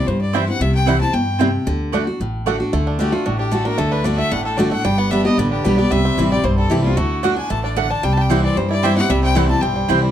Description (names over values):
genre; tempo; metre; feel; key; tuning
bluegrass; 226 BPM; 4/4; straight; D mixolydian; A4 = 440 Hz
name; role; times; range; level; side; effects
clear fiddle; melody; 0.0-10.1 s; F4 to A5; -23 LUFS; left 3 dB; none
picked steel-string acoustic guitar; accompaniment; 0.0-10.1 s; G2 to G4; -19 LUFS; left 1 dB; none
upright bass; bass; 0.1-10.1 s; G1 to G2; -21 LUFS; equal; none
bluegrass banjo; melody; 0.3-10.1 s; D3 to G4; -24 LUFS; right 4 dB; none
mandolin; stabs; 0.3-2.6, 7.2-10.0 s; A3 to G5; -21 LUFS; right 6 dB; none
room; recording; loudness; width
moderate small room reverb, RT60 0.5 s; dark, warm production; -15 LUFS; side -10 dB against mid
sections
0.0-2.7 A section; 2.7-10.1 A section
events
none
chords
0.0 C; 1.7 D; 4.9 G; 5.9 C; 7.0 D; 8.0 C